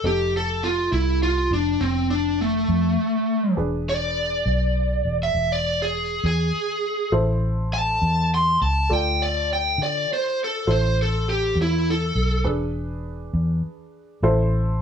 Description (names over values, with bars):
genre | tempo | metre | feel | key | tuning
slow blues | 68 BPM (dotted quarters) | 12/8 | straight | A minor | A4 = 441 Hz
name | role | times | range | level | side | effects
lead guitar through a small cranked amp | melody | 0.0-12.5 s | A3 to C6 | -22 LUFS | equal | overdrive
warm upright piano | accompaniment | 0.0-14.8 s | D4 to D5 | -28 LUFS | equal | none
vintage muted fingered electric bass | bass | 0.0-14.8 s | E1 to D3 | -23 LUFS | equal | none
room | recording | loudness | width
light reverb | band playing live in one room | -20 LUFS | side -7 dB against mid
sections
0.0-14.2 A section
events
lead electric guitar solo 0.0-14.8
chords
0.0 F7; 3.6 E7; 7.1 Am; 8.9 Dm; 10.7 Am; 12.5 E7; 14.2 Am